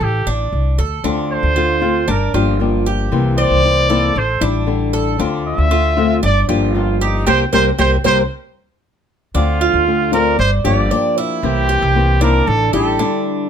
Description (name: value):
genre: latin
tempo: 116 BPM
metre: 4/4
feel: straight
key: D minor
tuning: A4 = 440 Hz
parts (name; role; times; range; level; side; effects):
- warm trumpet; melody; 0.0-13.2 s; Eb4 to E5; -18 LUFS; right 1 dB; none
- Cuban tres; arpeggios; 0.0-13.5 s; D4 to D5; -20 LUFS; right 4 dB; none
- upright bass; bass; 0.0-13.0 s; G1 to D2; -18 LUFS; equal; none
- flamenco guitar; accompaniment; 1.0-13.5 s; C3 to G4; -19 LUFS; left 7 dB; none
room: light reverb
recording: close, detailed microphones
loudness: -13 LUFS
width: side -8 dB against mid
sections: 0.0-9.3 A section; 9.3-13.5 B section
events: trumpet solo 0.0-9.3; band accent 7.3-9.3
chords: 0.0 Asus4; 1.0 Dm7; 2.1 Gm7; 3.1 C7; 4.2 A7sus4; 5.2 Dm9; 6.2 Gm7; 7.3 C5; 8.3 N.C.; 9.3 Dm7; 10.4 Gm7; 11.4 C7; 12.5 A7sus4